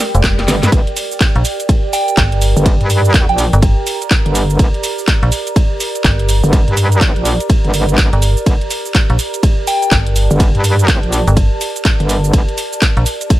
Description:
bass house; 124 BPM; 4/4; swing 62% on 16ths; G minor; A4 = 443 Hz
garage drum kit; drums; 0.0-13.4 s; handclaps, hi-hat, ride cymbal, shaker, snare drum; -19 LUFS; right 1 dB
swell; sound effects; 0.0-0.7 s; -26 LUFS; right 1 dB
warbly tape-like pad; texture; 0.0-13.4 s; G4 to Bb5; -22 LUFS; right 2 dB; chorus, built-in reverb, sidechain pumping
metallic FM bass; bass; 0.1-13.0 s; F1 to Bb1; -13 LUFS; equal; tube saturation, sidechain pumping
electronic kick drum; drums; 0.2-13.4 s; -12 LUFS; equal
metallic wobble bass; bass; 0.5-12.5 s; G1 to G2; -14 LUFS; equal; chorus, sidechain pumping
soft synth bell; melody; 1.9-3.8, 9.7-10.2 s; G5; -19 LUFS; equal; chorus, phaser, tape echo
light reverb; -11 LUFS; side -15 dB against mid
0.0-13.4 A section
drum fill 0.0-0.7; swell 0.0-0.7
0.0 Gm

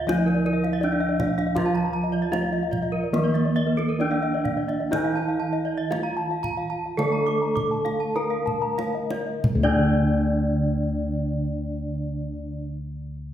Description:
Balinese gamelan; 44-81 BPM; 4/4; straight; D pelog; A4 = 441 Hz
gamelan-type bronze metallophone; melody; 0.0-12.7 s; Bb3 to Bb4; -27 LUFS; right 1 dB
gamelan-type bronze metallophone; arpeggios; 0.0-12.7 s; Bb4 to Bb5; -30 LUFS; left 4 dB
gamelan-type bossed gongs; bass; 0.0-12.6 s; D2 to F4; -26 LUFS; equal
kendang; percussion; 0.1-10.1 s; -31 LUFS; equal
gamelan-type bronze metallophone; arpeggios; 0.2-12.7 s; A4 to D6; -32 LUFS; right 4 dB
gamelan-type bronze metallophone; accompaniment; 1.6-12.7 s; D3 to Bb3; -31 LUFS; right 2 dB
wet recital hall reverb, RT60 1.5 s; recorded in a church or concert hall; -22 LUFS; side -10 dB against mid
0.0-9.4 A section; 9.4-13.3 B section
slowing down 1.6-9.4; drum fill 8.5-9.4

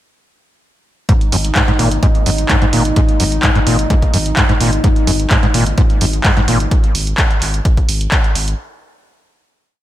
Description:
acid house; 128 BPM; 4/4; straight; A4 = 440 Hz
warm analog pad; sustained chords; 1.1-6.7 s; D#4; -22 LUFS; equal; chorus, sidechain pumping
overdriven acid bass; riff; 1.1-6.6 s; F#2 to A#2; -17 LUFS; equal; distortion, analog chorus, digital delay
electronic kick drum; drums; 1.1-8.2 s; -15 LUFS; equal
punchy analog drum machine; drums; 1.1-8.6 s; handclaps, hi-hat; -19 LUFS; right 1 dB
saturated sub bass; bass; 1.3-8.5 s; G#1; -19 LUFS; equal; sidechain pumping
light reverb, digital ambience; bright 1980s-style digital production; -11 LUFS; side -14 dB against mid
1.1-8.6 groove
1.1 G#5

